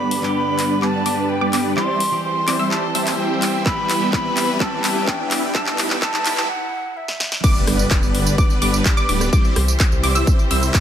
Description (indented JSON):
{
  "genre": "EDM, festival progressive house",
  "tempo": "127 BPM",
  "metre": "4/4",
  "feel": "straight",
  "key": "unclear",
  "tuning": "A4 = 440 Hz",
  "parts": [
    { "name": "wooden flute", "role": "melody", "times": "0.0-7.4 s", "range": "E5 to C6", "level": "-24 LUFS", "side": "equal", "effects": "ping-pong delay" },
    { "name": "twangy electric guitar", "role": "accompaniment", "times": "0.0-6.5 s", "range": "G2 to G4", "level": "-28 LUFS", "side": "right 2 dB", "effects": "sidechain pumping" },
    { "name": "clear symphonic string section", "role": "sustained chords", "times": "0.0-10.8 s", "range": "D3 to C5", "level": "-28 LUFS", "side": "left 1 dB", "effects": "sidechain pumping" },
    { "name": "wide unison pluck", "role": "arpeggios", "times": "0.0-10.8 s", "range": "D6 to E6", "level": "-27 LUFS", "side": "right 1 dB", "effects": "sidechain pumping, ping-pong delay" },
    { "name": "big supersaw lead", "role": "riff", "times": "0.0-10.8 s", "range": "G3 to E5", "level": "-23 LUFS", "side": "right 1 dB", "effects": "phaser, cassette tape, sidechain pumping, low-pass filter" },
    { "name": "riser and impact", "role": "sound effects", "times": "2.2-9.3 s", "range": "none", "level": "-30 LUFS", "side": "left 1 dB", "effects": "none" },
    { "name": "big-room dance drum kit", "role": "drums", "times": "0.1-10.8 s", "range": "crash cymbal, handclaps, hi-hat, rim click, snare drum, tambourine", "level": "-24 LUFS", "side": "equal", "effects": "none" },
    { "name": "electronic kick drum", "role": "drums", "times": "3.7-10.8 s", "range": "none", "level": "-17 LUFS", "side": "equal", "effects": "none" },
    { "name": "wide detuned saw bass", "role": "bass", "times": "7.7-10.7 s", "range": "D1 to C2", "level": "-20 LUFS", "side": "equal", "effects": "chorus, tube saturation, sidechain pumping" }
  ],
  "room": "light reverb, digital ambience",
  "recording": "high-pass filter",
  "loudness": "-16 LUFS",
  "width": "side -9 dB against mid",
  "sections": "0.0-7.4 A section; 7.4-10.8 B section",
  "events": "build-up 0.0-7.4; drum fill 0.0-6.5, 7.1-7.4; filter sweep on supersaw synth 0.0-7.4; filter sweep 0.0-7.4; riser 2.2-6.5; break 6.5-7.4; drop 7.4-10.8; impact 7.4-9.3",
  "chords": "0.0 G; 1.8 C; 3.7 Em; 5.5 A5; 7.4 G; 9.3 C"
}